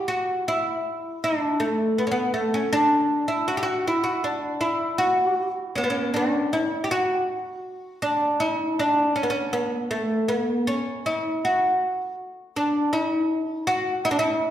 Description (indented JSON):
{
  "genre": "persian",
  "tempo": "80 BPM",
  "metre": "3/4",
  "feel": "straight",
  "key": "D dastgah mahur",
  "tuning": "A4 = 441 Hz",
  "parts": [
    { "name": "oud", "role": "solo", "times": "0.0-14.5 s", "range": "A3 to G4", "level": "-22 LUFS", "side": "equal", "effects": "none" }
  ],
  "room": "wet recital hall reverb, RT60 1.5 s",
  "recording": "recorded in a church or concert hall",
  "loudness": "-22 LUFS",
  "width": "side -11 dB against mid",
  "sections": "0.0-6.9 A section; 6.9-14.5 B section",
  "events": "none",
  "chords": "none",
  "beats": "| 0.09 0.84 1.60 | 2.36 3.11 3.87 | 4.63 5.38 6.14 | 6.89 7.65 8.40 | 9.15 9.91 10.66 | 11.41 12.17 12.92 | 13.67 14.43"
}